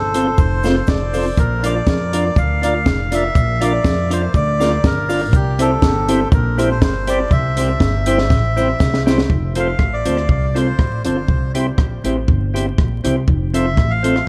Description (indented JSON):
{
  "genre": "ska",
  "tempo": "121 BPM",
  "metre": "4/4",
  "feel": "swing 54% on 8ths",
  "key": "F major",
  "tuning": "A4 = 441 Hz",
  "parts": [
    { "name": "melodica", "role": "melody", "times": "0.0-14.3 s", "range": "G4 to F5", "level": "-24 LUFS", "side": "equal", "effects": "dub echo" },
    { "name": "upright bass", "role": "bass", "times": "0.0-14.2 s", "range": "F1 to F2", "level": "-22 LUFS", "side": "equal", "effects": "none" },
    { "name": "hollow-body jazz guitar", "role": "accompaniment", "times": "0.1-14.2 s", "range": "C4 to D5", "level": "-26 LUFS", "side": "equal", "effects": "none" },
    { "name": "percussive tonewheel organ", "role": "stabs", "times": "0.1-14.2 s", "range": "C4 to D5", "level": "-27 LUFS", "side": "equal", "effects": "slow rotary speaker, dub echo" },
    { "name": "compact cocktail drum kit", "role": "drums", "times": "0.1-14.3 s", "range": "hi-hat, kick drum, rim click, snare drum", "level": "-20 LUFS", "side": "equal", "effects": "none" },
    { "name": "cabasa", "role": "percussion", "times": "0.2-9.2 s", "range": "none", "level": "-46 LUFS", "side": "equal", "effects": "none" }
  ],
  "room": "light reverb",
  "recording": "vinyl crackle",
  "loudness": "-17 LUFS",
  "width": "mono",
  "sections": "0.0-9.3 A section; 9.3-14.3 B section",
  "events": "drum fill 8.3-9.3",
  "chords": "0.0 F; 1.4 Bb; 5.3 C; 9.3 F; 11.3 C; 13.3 F",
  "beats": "0.38 0.88 | 1.37 1.86 2.36 2.85 | 3.35 3.84 4.34 4.83 | 5.33 5.82 6.32 6.81 | 7.31 7.80 8.30 8.80 | 9.29 9.79 10.29 10.79 | 11.28 11.78 12.28 12.78 | 13.28 13.78 14.28"
}